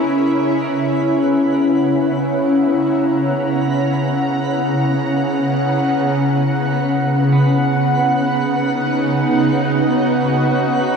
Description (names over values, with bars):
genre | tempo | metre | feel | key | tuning
ambient | free time | none | none | C# dorian | A4 = 440 Hz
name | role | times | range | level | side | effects
shimmering ambient pad | sustained chords | 0.0-11.0 s | C#3 to A#5 | -15 LUFS | equal | chorus, built-in reverb
electric guitar at the edge of break-up | arpeggios | 0.0-11.0 s | B3 to D#5 | -31 LUFS | right 2 dB | diffuse ambient delay
twinkling granular texture | texture | 0.0-11.0 s | B3 to B4 | -28 LUFS | right 1 dB | built-in reverb
room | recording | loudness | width
wet lush hall reverb, RT60 2.7 s | dark, warm production | -14 LUFS | side -6 dB against mid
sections
0.0-11.0 A section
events
fade-in on synth texture 0.0-11.0; fade-out on clean electric guitar 0.0-11.0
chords
0.0 C#m; 7.0 B/C#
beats
free time